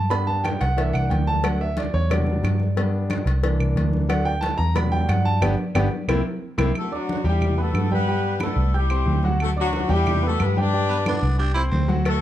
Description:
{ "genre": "latin, salsa", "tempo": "181 BPM", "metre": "4/4", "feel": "straight", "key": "unclear", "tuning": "A4 = 440 Hz", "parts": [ { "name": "clear concert grand piano", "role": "accompaniment", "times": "0.0-12.2 s", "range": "E3 to G6", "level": "-25 LUFS", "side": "equal", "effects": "none" }, { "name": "vintage muted picked electric bass", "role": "bass", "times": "0.0-12.2 s", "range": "G1 to G2", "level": "-22 LUFS", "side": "equal", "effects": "none" }, { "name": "congas", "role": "percussion", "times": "0.1-12.2 s", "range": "none", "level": "-29 LUFS", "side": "equal", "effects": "none" }, { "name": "cowbell", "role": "percussion", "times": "0.1-6.7, 12.1-12.2 s", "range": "none", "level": "-32 LUFS", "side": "left 4 dB", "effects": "none" }, { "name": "claves", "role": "percussion", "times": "0.5-12.2 s", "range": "none", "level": "-35 LUFS", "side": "right 4 dB", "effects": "none" }, { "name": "dark horn section", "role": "melody", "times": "6.8-12.2 s", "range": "F#3 to D5", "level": "-25 LUFS", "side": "left 2 dB", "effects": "none" }, { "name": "raspy baritone saxophone", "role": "second line", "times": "10.9-12.0 s", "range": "B3 to E4", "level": "-28 LUFS", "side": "right 2 dB", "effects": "none" } ], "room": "moderate large studio reverb, RT60 1.0 s", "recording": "dark, warm production", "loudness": "-19 LUFS", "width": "side -12 dB against mid", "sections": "0.0-6.8 A section; 6.8-12.2 B section", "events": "grand piano solo 0.0-6.8; band accent 5.4-6.8; drum fill 6.1-6.8", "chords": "0.1 G; 0.8 C7; 1.4 D; 2.1 Em7; 2.8 G; 3.4 C7; 4.1 D; 4.8 Em7; 5.4 G; 6.1 C7; 6.8 D; 7.4 Em; 8.1 G; 8.7 C; 9.4 D; 10.1 Em; 10.7 G; 11.4 C5" }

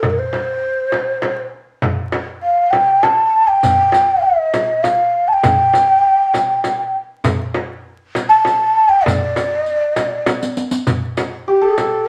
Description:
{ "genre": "Persian modal ensemble", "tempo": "100 BPM", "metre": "3/4", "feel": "straight", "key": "unclear", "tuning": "A4 = 440 Hz", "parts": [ { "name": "breathy mellow ney", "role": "melody", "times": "0.0-12.1 s", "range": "G4 to A5", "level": "-16 LUFS", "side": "equal", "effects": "none" }, { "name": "frame drum", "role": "percussion", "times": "0.0-11.9 s", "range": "none", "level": "-23 LUFS", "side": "equal", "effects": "none" }, { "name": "tombak", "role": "percussion", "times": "0.0-11.9 s", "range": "none", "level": "-29 LUFS", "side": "equal", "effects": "none" }, { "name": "riq", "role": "percussion", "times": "3.6-11.9 s", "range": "none", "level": "-28 LUFS", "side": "equal", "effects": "none" }, { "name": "santur", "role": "second line", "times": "11.5-12.1 s", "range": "G4 to A4", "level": "-21 LUFS", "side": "equal", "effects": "none" } ], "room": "moderate studio reverb, RT60 0.8 s", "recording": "vinyl crackle", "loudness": "-16 LUFS", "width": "mono", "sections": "0.0-10.9 A section; 10.9-12.1 B section", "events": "drum fill 10.3-10.9", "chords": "none" }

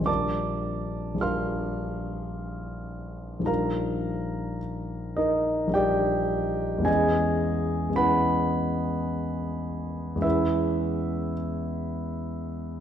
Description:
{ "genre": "classical, impressionist solo piano", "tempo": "53 BPM", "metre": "3/4", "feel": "rubato", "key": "unclear", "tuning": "A4 = 440 Hz", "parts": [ { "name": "warm concert grand piano", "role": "solo", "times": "0.0-12.8 s", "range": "Bb1 to F6", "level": "-25 LUFS", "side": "equal", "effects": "none" } ], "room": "wet scoring stage reverb, RT60 1.9 s", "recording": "dark, warm production, nothing above 10.4 kHz", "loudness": "-25 LUFS", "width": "side -9 dB against mid", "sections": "0.0-12.8 A section", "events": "none", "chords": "0.1 Bb6; 3.5 Ebmaj9/Bb; 6.9 E6" }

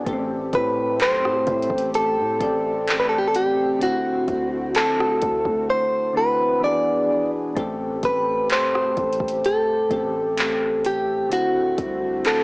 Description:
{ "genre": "contemporary R&B", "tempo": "64 BPM", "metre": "4/4", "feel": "straight", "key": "A dorian", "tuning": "A4 = 440 Hz", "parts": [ { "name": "soft electric-piano-like synth keys", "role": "accompaniment", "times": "0.0-12.4 s", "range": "A2 to D5", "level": "-27 LUFS", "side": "left 1 dB", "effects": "chorus, tremolo, cassette tape" }, { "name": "chorused pulse-width pad", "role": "sustained chords", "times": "0.0-12.4 s", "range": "D3 to G#4", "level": "-30 LUFS", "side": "equal", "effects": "cassette tape" }, { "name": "long sustained 808-style bass", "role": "bass", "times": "0.0-12.2 s", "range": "A1 to A2", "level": "-33 LUFS", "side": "equal", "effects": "none" }, { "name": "smooth R&B drum kit", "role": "drums", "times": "0.1-12.4 s", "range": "handclaps, hi-hat, kick drum, rim click", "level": "-26 LUFS", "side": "equal", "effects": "cassette tape" }, { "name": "direct-recorded clean electric guitar", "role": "melody", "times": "0.5-12.4 s", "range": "F#4 to D5", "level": "-20 LUFS", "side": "equal", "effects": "tape echo" } ], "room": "light reverb, digital ambience", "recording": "home recording on cassette, small speaker sound", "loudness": "-19 LUFS", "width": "side -30 dB against mid", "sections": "0.0-12.4 A section", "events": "drums muted 5.7-7.6", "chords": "0.1 Am7; 3.8 D7; 6.6 E7; 7.6 Am7; 11.3 D7" }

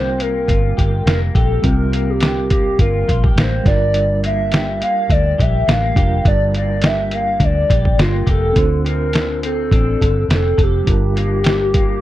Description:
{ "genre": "indie pop, bedroom pop", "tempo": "104 BPM", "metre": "4/4", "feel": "swing 55% on 16ths", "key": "G minor", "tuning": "A4 = 440 Hz", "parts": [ { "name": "hollow clarinet-like synth lead", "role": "melody", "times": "0.0-12.0 s", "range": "F4 to F5", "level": "-20 LUFS", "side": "equal", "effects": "lush chorus, slapback echo" }, { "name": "electric guitar through a small old amp", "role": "accompaniment", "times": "0.0-12.0 s", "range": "G2 to A4", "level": "-26 LUFS", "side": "left 4 dB", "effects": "analog chorus, warbly pitch drift" }, { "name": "mellow reed electric piano", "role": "accompaniment", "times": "0.0-12.0 s", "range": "G3 to C5", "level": "-26 LUFS", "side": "right 4 dB", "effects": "fast tremolo" }, { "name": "vintage muted fingered electric bass", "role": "bass", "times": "0.0-12.0 s", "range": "F1 to D2", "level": "-19 LUFS", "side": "equal", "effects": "none" }, { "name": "lo-fi sampler-style drum kit", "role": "drums", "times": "0.2-11.9 s", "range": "hi-hat, kick drum, snare drum", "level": "-17 LUFS", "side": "equal", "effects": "none" } ], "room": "little or no reverb", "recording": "dark, warm production", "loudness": "-13 LUFS", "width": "side -14 dB against mid", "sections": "0.0-12.0 A section", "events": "none", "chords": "0.0 C7sus4; 3.7 Gm7; 8.6 Dm7; 10.9 Gm7" }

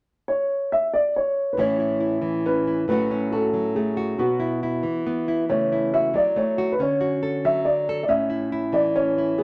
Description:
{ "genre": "folk", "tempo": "46 BPM (dotted quarters)", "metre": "6/8", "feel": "straight", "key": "A major", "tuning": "A4 = 441 Hz", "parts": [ { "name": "dark upright piano", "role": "melody", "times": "0.3-9.4 s", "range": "F#4 to E5", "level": "-25 LUFS", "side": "equal", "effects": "none" }, { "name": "nylon-string guitar", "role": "accompaniment", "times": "1.6-9.4 s", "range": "E2 to A4", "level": "-26 LUFS", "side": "equal", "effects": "none" } ], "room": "moderate club reverb, RT60 0.6 s", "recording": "none", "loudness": "-23 LUFS", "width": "mono", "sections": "0.0-1.6 A section; 1.6-9.4 B section", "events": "none", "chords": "0.0 N.C.; 1.6 A; 2.9 F#m/A; 4.2 Bsus4; 5.5 F#m7/C#; 6.8 Dmaj7; 8.1 A" }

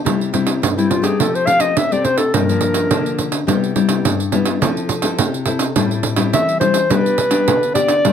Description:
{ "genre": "samba and choro", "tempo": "105 BPM", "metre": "4/4", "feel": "straight", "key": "C major", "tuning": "A4 = 441 Hz", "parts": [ { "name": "nylon-string guitar", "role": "accompaniment", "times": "0.0-8.1 s", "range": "G2 to A4", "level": "-19 LUFS", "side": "left 5 dB", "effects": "none" }, { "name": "pandeiro", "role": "percussion", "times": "0.1-8.1 s", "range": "none", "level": "-19 LUFS", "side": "right 6 dB", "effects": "none" }, { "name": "mellow clarinet", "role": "melody", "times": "0.8-8.1 s", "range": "E4 to F5", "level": "-16 LUFS", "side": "left 1 dB", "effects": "none" } ], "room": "light reverb", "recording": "close, detailed microphones", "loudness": "-14 LUFS", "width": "side -8 dB against mid", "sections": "0.1-8.1 A section", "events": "clarinet solo 0.1-8.1", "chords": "0.1 C; 1.2 Fadd9; 2.3 Gm7; 3.5 Cmaj7; 4.6 Fmaj7; 5.8 Am7; 6.9 G" }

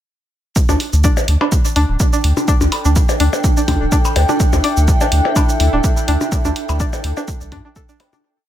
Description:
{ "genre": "minimal techno", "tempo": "125 BPM", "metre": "4/4", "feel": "swing 54% on 16ths", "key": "unclear", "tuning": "A4 = 440 Hz", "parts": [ { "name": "electronic kick drum", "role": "drums", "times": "0.6-7.9 s", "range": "none", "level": "-16 LUFS", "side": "equal", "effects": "studio reverb" }, { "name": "electronic shaker and hi-hat", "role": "drums", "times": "0.6-8.2 s", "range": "none", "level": "-25 LUFS", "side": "right 2 dB", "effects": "studio reverb" }, { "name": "granular cloud pad", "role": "texture", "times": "2.0-8.2 s", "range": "D4 to G5", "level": "-23 LUFS", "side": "equal", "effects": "built-in reverb, sidechain pumping" }, { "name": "string-like resonator pluck", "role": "riff", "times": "0.7-8.2 s", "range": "D4 to A4", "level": "-22 LUFS", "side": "equal", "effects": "chorus, sidechain pumping, dub echo" }, { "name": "saturated sub bass", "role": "bass", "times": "0.7-7.6 s", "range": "D1 to G2", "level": "-15 LUFS", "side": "equal", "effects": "sidechain pumping" }, { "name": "percussion blips", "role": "percussion", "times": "0.7-8.2 s", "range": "none", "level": "-22 LUFS", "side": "left 3 dB", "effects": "studio reverb, tape echo" }, { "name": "pulsing gated texture", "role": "texture", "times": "4.4-8.2 s", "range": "E4 to E5", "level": "-27 LUFS", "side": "left 2 dB", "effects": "chorus, built-in reverb, sidechain pumping" } ], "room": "light reverb, digital ambience", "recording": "echo-heavy mix", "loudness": "-13 LUFS", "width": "side -12 dB against mid", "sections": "0.6-8.2 groove", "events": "fade-out 5.7-8.2", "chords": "0.6 Dsus4" }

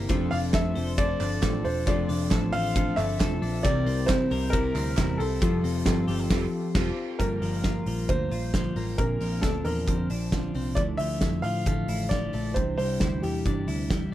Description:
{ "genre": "jangly indie pop", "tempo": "135 BPM", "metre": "4/4", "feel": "straight", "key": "F major", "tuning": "A4 = 436 Hz", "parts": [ { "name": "chorused retro synth keys", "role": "accompaniment", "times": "0.0-7.2 s", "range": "Bb3 to C6", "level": "-33 LUFS", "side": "left 3 dB", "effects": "none" }, { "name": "mellow electric guitar", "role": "accompaniment", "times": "0.0-14.1 s", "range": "G2 to C5", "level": "-33 LUFS", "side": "right 5 dB", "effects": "none" }, { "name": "twelve-string electric guitar", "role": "arpeggios", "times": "0.0-14.1 s", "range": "G2 to C5", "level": "-32 LUFS", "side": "left 4 dB", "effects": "slapback echo" }, { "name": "vintage muted picked electric bass", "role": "bass", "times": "0.0-14.1 s", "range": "E1 to C3", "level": "-31 LUFS", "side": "equal", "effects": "none" }, { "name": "loose indie drum kit", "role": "drums", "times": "0.1-14.0 s", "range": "crash cymbal, hi-hat, kick drum, ride cymbal, snare drum", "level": "-29 LUFS", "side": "equal", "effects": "none" }, { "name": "warm upright piano", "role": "melody", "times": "0.3-13.6 s", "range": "G4 to F5", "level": "-31 LUFS", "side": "equal", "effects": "none" }, { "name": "group handclap", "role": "percussion", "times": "0.5-6.0 s", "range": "none", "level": "-40 LUFS", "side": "right 16 dB", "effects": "none" } ], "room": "little or no reverb", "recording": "none", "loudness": "-24 LUFS", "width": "side -13 dB against mid", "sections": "0.0-7.2 A section; 7.2-14.1 B section", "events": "band accent 6.3-7.2", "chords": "0.1 F6; 3.6 C7; 5.4 Fadd9; 7.2 Gm7; 9.0 Bbadd9; 10.8 Dmadd9; 12.6 Cadd9" }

